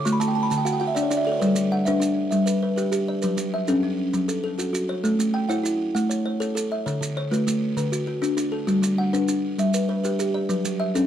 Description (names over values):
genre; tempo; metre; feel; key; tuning
southern african traditional, mbira-style interlocking cycle; 132 BPM (dotted quarters); 12/8; straight; unclear; A4 = 438 Hz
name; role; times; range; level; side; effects
buzzing kalimba; arpeggios; 0.0-11.1 s; D3 to D6; -26 LUFS; right 3 dB; none
kalimba; arpeggios; 0.0-11.1 s; D3 to G5; -23 LUFS; left 2 dB; none
maracas; percussion; 0.1-11.1 s; none; -33 LUFS; right 5 dB; none
room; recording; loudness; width
light reverb; dark, warm production; -21 LUFS; side -10 dB against mid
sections
0.0-11.1 A section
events
kalimba fill 0.0-1.4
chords
0.0 D; 1.4 G; 3.2 F#m; 5.0 A; 6.9 D; 8.7 G; 10.5 F#m